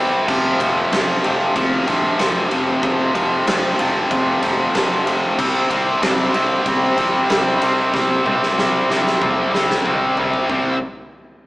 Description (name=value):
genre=hard rock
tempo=94 BPM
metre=4/4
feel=straight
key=unclear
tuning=A4 = 440 Hz
part: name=tight distorted guitar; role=riff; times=0.0-10.8 s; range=F2 to C4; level=-17 LUFS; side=equal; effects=distortion
part: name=fuzz fingered electric bass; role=bass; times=0.0-10.8 s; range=F1 to F2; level=-29 LUFS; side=equal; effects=overdrive
part: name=huge arena drum kit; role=drums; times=0.3-10.6 s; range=crash cymbal, kick drum, ride cymbal, snare drum, toms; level=-22 LUFS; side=equal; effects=none
room=moderate stone room reverb, RT60 1.3 s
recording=band playing live in one room, small speaker sound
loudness=-15 LUFS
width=side -19 dB against mid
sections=0.0-10.5 A section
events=drum fill 7.9-10.5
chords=0.3 F5; 5.4 C5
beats=| 0.28 0.92 1.56 2.19 | 2.83 3.47 4.11 4.74 | 5.38 6.02 6.66 7.30 | 7.94 8.57 9.21 9.86 | 10.49